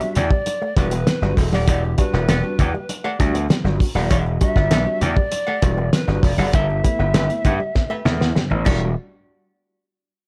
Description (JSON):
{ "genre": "funk", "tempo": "99 BPM", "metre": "4/4", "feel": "straight", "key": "E minor", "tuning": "A4 = 435 Hz", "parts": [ { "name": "mellow pan flute", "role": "melody", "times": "0.0-8.4 s", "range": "G4 to E5", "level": "-28 LUFS", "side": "equal", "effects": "plate reverb" }, { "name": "archtop guitar, miked and amplified", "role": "accompaniment", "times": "0.0-8.8 s", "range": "G4 to G5", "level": "-31 LUFS", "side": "equal", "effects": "wah, plate reverb" }, { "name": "barky tine electric piano", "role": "stabs", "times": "0.0-8.9 s", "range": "G2 to F#4", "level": "-31 LUFS", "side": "equal", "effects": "overdrive, fast tremolo, plate reverb" }, { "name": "cloth-damped thuddy drum kit", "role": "drums", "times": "0.0-8.8 s", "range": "crash cymbal, hi-hat, kick drum, snare drum", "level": "-22 LUFS", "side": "equal", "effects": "none" }, { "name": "electric guitar with an envelope filter", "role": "riff", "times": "0.2-8.8 s", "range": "E3 to B3", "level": "-33 LUFS", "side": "equal", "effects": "none" }, { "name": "gritty slap bass", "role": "bass", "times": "0.2-8.9 s", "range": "D#1 to G2", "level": "-23 LUFS", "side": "equal", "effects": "overdrive" }, { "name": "congas", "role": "percussion", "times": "0.2-8.9 s", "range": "none", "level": "-30 LUFS", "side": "equal", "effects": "none" } ], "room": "light reverb", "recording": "none", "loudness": "-19 LUFS", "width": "mono", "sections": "0.0-9.0 A section; 9.0-10.3 B section", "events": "drum fill 7.7-9.0", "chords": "0.0 Em9; 6.5 G6; 8.7 Em9; 9.0 N.C." }